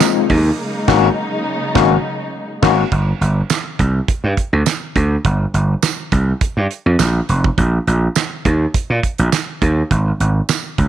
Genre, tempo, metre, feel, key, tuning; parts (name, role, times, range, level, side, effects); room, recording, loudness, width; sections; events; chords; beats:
early-eighties boogie funk; 103 BPM; 4/4; straight; A4 = 440 Hz
overdriven tine electric piano; accompaniment; 0.0-2.8 s; Ab3 to Gb4; -17 LUFS; left 14 dB; medium tremolo
dark studio string section; sustained chords; 0.0-2.9 s; C3 to Eb4; -22 LUFS; equal
damped 70s drum kit; drums; 0.0-10.9 s; crash cymbal, handclaps, hi-hat, kick drum, snare drum; -19 LUFS; right 4 dB
tambourine; percussion; 0.0-10.6 s; -26 LUFS; right 15 dB
gritty slap bass; bass; 0.3-10.9 s; F1 to Bb2; -15 LUFS; right 1 dB; overdrive
studio reverb; 1960s-style stereo with parts hard left and right; -14 LUFS; side -11 dB against mid
0.0-2.9 A section; 2.9-10.9 B section
band accent 0.6-2.9
0.0 Bb9sus4; 0.6 Ab9sus4; 2.9 Gsus4; 7.6 Bbsus4; 9.9 N.C.
0.01 | 0.59 1.17 1.75 2.34 | 2.92 3.50 4.08 4.67 | 5.25 5.83 6.41 7.00 | 7.58 8.16 8.74 9.33 | 9.91 10.49